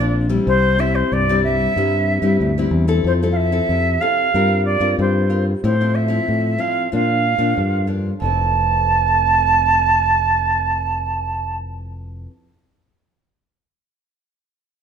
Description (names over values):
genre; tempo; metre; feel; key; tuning
samba and choro; 93 BPM; 4/4; straight; F major; A4 = 438 Hz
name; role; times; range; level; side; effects
concert flute; melody; 0.0-11.6 s; C5 to A5; -18 LUFS; right 3 dB; none
nylon-string guitar; accompaniment; 0.0-12.3 s; F2 to Bb4; -23 LUFS; left 4 dB; none
fingered electric bass; bass; 0.0-12.3 s; F1 to Bb2; -20 LUFS; equal; none
room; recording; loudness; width
moderate large studio reverb, RT60 1.2 s; minimal, uncompressed stereo recording; -15 LUFS; side -7 dB against mid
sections
0.0-3.1 A section; 3.1-8.2 B section; 8.2-10.8 C section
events
none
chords
0.5 C; 3.1 Fmaj7; 4.3 C7sus4/G; 5.6 Fmaj7/A; 6.9 Bb; 8.2 Fmaj7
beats
| 0.47 1.12 1.76 2.41 | 3.05 3.70 4.34 4.99 | 5.63 6.28 6.92 7.57 | 8.22 8.86 9.51 10.16